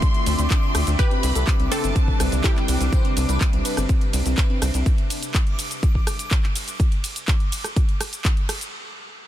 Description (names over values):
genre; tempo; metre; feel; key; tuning
progressive house; 124 BPM; 4/4; straight; unclear; A4 = 440 Hz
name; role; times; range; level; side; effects
wide unison pluck; melody; 0.0-2.9 s; C4 to C5; -30 LUFS; equal; digital delay
rich symphonic violin section; second line; 0.0-2.9 s; G5 to C6; -32 LUFS; equal; sidechain pumping, digital delay
evolving wavetable pad; sustained chords; 0.0-4.8 s; C3 to E5; -30 LUFS; equal; chorus, built-in reverb, sidechain pumping
glassy wavetable pluck; arpeggios; 0.0-4.8 s; C4 to C5; -30 LUFS; left 1 dB; chorus, sidechain pumping, digital delay
electronic kick drum; drums; 0.0-8.3 s; none; -20 LUFS; equal; none
pop drum kit; drums; 0.0-8.7 s; cabasa, handclaps, hi-hat, ride cymbal, rim click; -28 LUFS; right 1 dB; sidechain pumping on hats, sidechain pumping on perc, sidechain pumping on cymbals
backwards swelling texture; texture; 0.0-6.8 s; D6; -37 LUFS; left 1 dB; built-in reverb, sidechain pumping
tight sequencer bass; bass; 0.3-4.8 s; G1 to D2; -22 LUFS; equal; tube saturation, sidechain pumping
room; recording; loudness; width
little or no reverb; dense, heavily limited modern master; -19 LUFS; side -12 dB against mid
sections
0.0-8.7 A section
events
drop 0.0-8.7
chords
0.0 Dm7; 1.0 Cmaj7; 4.9 N.C.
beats
0.02 0.51 | 0.99 1.47 1.96 2.44 | 2.93 3.41 3.89 4.38 | 4.86 5.34 5.83 6.31 | 6.80 7.28 7.76 8.25